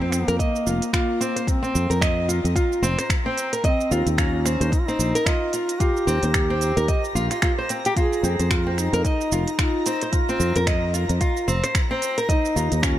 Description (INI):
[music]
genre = organic downtempo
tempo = 111 BPM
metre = 4/4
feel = swing 58% on 16ths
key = unclear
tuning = A4 = 442 Hz
[part]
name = dark duduk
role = melody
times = 0.0-13.0 s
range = Bb3 to Ab4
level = -28 LUFS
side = equal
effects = ping-pong delay
[part]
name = nylon-string guitar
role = arpeggios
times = 0.0-13.0 s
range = C4 to Eb5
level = -25 LUFS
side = equal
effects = low-pass filter, ping-pong delay
[part]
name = sustaining fretless electric bass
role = bass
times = 0.0-13.0 s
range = F1 to F2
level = -23 LUFS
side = equal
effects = analog chorus, sidechain pumping
[part]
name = twinkling granular texture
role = texture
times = 0.0-13.0 s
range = Bb5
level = -34 LUFS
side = right 1 dB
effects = built-in reverb
[part]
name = organic electronic drum kit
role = drums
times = 0.1-13.0 s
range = cabasa, finger snaps, hi-hat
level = -28 LUFS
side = right 3 dB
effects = none
[part]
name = electronic kick drum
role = drums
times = 0.4-13.0 s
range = none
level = -23 LUFS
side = equal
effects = none
[sound]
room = digital ambience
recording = none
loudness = -19 LUFS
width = side -12 dB against mid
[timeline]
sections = 0.0-13.0 A section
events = none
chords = 0.0 F7sus4; 3.6 Eb; 8.0 F7(no3); 12.3 Eb5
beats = 0.40 0.94 | 1.48 2.02 2.56 3.10 | 3.64 4.18 4.72 5.26 | 5.80 6.34 6.88 7.42 | 7.96 8.51 9.04 9.59 | 10.13 10.67 11.21 11.75 | 12.29 12.83